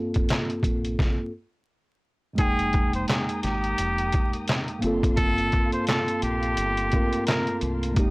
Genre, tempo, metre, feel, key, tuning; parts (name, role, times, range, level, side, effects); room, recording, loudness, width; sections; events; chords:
hip hop, boom-bap hip-hop; 86 BPM; 4/4; swing 60% on 16ths; A4 = 437 Hz
mellow tine electric piano; accompaniment; 0.0-8.1 s; F2 to G5; -28 LUFS; equal; medium stereo tremolo, cassette tape, high-pass filter, low-pass filter
trip hop sampler-style drum kit; drums; 0.1-8.1 s; handclaps, hi-hat, kick drum, snare drum; -24 LUFS; equal
deep dub fingered electric bass; bass; 0.6-8.1 s; F1 to C2; -30 LUFS; equal
trumpet with straight mute; melody; 2.4-7.6 s; G4 to C5; -28 LUFS; equal; high-pass filter, low-pass filter
dark symphonic string section; sustained chords; 2.4-8.1 s; Bb3 to Eb6; -39 LUFS; left 2 dB; high-pass filter, low-pass filter
little or no reverb; dry, gritty hardware recording, transformer saturation, vinyl crackle; -22 LUFS; side -24 dB against mid
0.0-2.4 A section; 2.4-8.1 B section
stop 1.0-2.4
0.0 Gm11; 2.4 Fm11; 4.8 Gm11